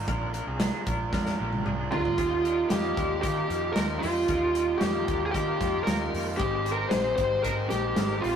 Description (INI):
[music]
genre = jangly indie pop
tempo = 114 BPM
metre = 4/4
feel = straight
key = Eb major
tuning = A4 = 435 Hz
[part]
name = overdriven electric guitar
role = accompaniment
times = 0.0-8.4 s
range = Bb2 to Bb4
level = -35 LUFS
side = right 3 dB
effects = none
[part]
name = twelve-string electric guitar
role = arpeggios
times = 0.0-8.4 s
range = Ab3 to C5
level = -37 LUFS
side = left 5 dB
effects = tremolo
[part]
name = vintage muted fingered electric bass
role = bass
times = 0.0-8.4 s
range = Ab1 to Eb3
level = -34 LUFS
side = equal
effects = none
[part]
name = modern studio drum kit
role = drums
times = 0.1-8.4 s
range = hi-hat, kick drum, snare drum, toms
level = -30 LUFS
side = equal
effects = none
[part]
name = lead guitar through a small cranked amp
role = melody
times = 1.9-8.4 s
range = F4 to C5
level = -27 LUFS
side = equal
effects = overdrive, digital delay
[part]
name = combo organ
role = accompaniment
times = 2.2-8.4 s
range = Ab3 to G4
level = -36 LUFS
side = right 3 dB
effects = none
[sound]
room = moderate stone room reverb, RT60 1.0 s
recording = rough rehearsal-room recording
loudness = -24 LUFS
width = side -8 dB against mid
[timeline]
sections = 0.0-2.2 A section; 2.2-8.4 B section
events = drum fill 1.1-2.2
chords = 0.0 Bb7; 2.2 Ebadd9; 6.4 Abmaj7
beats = | 0.08 0.61 1.13 1.66 | 2.19 2.71 3.24 3.77 | 4.29 4.82 5.34 5.87 | 6.39 6.92 7.45 7.97